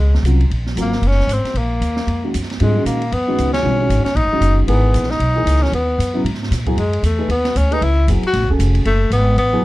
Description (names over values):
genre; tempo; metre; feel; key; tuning
modal jazz; 230 BPM; 4/4; swing 59% on 8ths; unclear; A4 = 442 Hz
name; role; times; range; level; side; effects
breathy tenor saxophone; melody; 0.0-9.6 s; Ab3 to F#4; -19 LUFS; left 1 dB; none
upright bass; bass; 0.0-9.6 s; E1 to A#2; -16 LUFS; equal; none
open jazz drum kit; drums; 0.1-9.4 s; hi-hat, kick drum, ride cymbal, snare drum; -28 LUFS; right 2 dB; none
dark upright piano; accompaniment; 0.2-9.6 s; Db3 to B4; -22 LUFS; equal; none
room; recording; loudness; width
little or no reverb; dark, warm production; -14 LUFS; side -18 dB against mid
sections
0.0-2.6 A section; 2.6-9.6 B section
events
band accent 3.5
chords
0.0 Ebm9; 2.6 G#m9; 6.8 F#m9